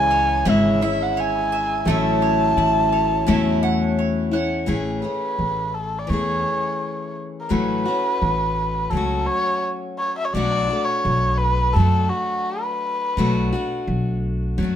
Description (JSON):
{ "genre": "acoustic folk duo or small band", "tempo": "85 BPM", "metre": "4/4", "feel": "straight", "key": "A major", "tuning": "A4 = 437 Hz", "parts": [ { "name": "dark erhu", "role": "melody", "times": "0.0-13.7 s", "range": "F#4 to A5", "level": "-22 LUFS", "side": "left 1 dB", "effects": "none" }, { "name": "picked steel-string acoustic guitar", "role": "accompaniment", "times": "0.0-14.8 s", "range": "A2 to G#4", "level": "-24 LUFS", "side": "left 3 dB", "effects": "none" }, { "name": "mandolin", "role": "arpeggios", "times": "0.0-4.8 s", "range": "G#3 to F#5", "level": "-24 LUFS", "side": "right 6 dB", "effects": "none" }, { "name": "upright bass", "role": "bass", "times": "0.0-14.8 s", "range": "G#1 to F#2", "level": "-23 LUFS", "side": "equal", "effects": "none" } ], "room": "moderate studio reverb, RT60 0.6 s", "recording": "minimal, uncompressed stereo recording", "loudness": "-18 LUFS", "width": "side -9 dB against mid", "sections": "0.0-4.7 A section; 4.7-14.8 B section", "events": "erhu solo 4.7-14.8", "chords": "0.0 C#m; 1.9 A6; 4.7 Amaj7; 7.5 F#m/A; 10.3 Bm7" }